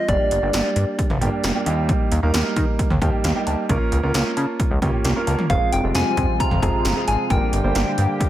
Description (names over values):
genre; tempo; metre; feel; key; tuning
synth-pop; 133 BPM; 4/4; straight; Eb major; A4 = 440 Hz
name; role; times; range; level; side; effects
soft struck synth lead; melody; 0.0-1.4, 5.5-8.3 s; D5 to Bb5; -24 LUFS; equal; chorus, diffuse ambient delay
warm concert grand piano; accompaniment; 0.0-8.3 s; G3 to C5; -24 LUFS; right 2 dB; none
chorused synth bass; bass; 0.1-8.1 s; F1 to Eb3; -21 LUFS; equal; none
80s electronic pad drums; drums; 0.1-8.3 s; cowbell, hi-hat, kick drum, snare drum, toms; -22 LUFS; equal; gated reverb on snare and toms
chorused pulse-width pad; sustained chords; 5.5-8.3 s; C3 to G4; -26 LUFS; left 1 dB; none
room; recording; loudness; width
moderate plate reverb, RT60 1.4 s, digital ambience; dreamy mix soaked in reverb; -18 LUFS; side -13 dB against mid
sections
0.0-8.3 A section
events
none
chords
0.1 Gm; 1.7 Eb; 3.7 Bbm/Db; 5.5 Fm; 7.3 Gm